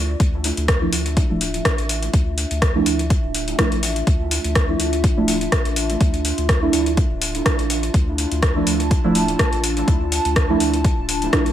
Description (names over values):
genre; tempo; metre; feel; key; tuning
dub techno; 124 BPM; 4/4; swing 55% on 16ths; D minor; A4 = 440 Hz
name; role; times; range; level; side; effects
dark analog pad; sustained chords; 0.0-11.5 s; D4 to A5; -26 LUFS; equal; chorus, phaser, sidechain pumping
warm sub bass; bass; 0.0-11.5 s; D1 to D2; -25 LUFS; equal; sidechain pumping
electronic kick drum; drums; 0.2-11.4 s; none; -19 LUFS; equal; overdrive
soft vintage rhythm box; drums; 0.2-11.5 s; hi-hat, rim click; -23 LUFS; left 1 dB; none
deep mellow chord stab; stabs; 0.8-11.5 s; F3 to E4; -23 LUFS; right 2 dB; chorus, phaser, sidechain pumping, dub echo
room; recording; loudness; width
light reverb; none; -17 LUFS; side -11 dB against mid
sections
0.2-11.5 A section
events
break 0.0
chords
0.2 Dmadd9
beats
| 0.20 0.68 1.17 1.65 | 2.13 2.62 3.10 3.59 | 4.07 4.55 5.04 5.52 | 6.01 6.49 6.97 7.46 | 7.94 8.43 8.91 9.39 | 9.88 10.36 10.85 11.33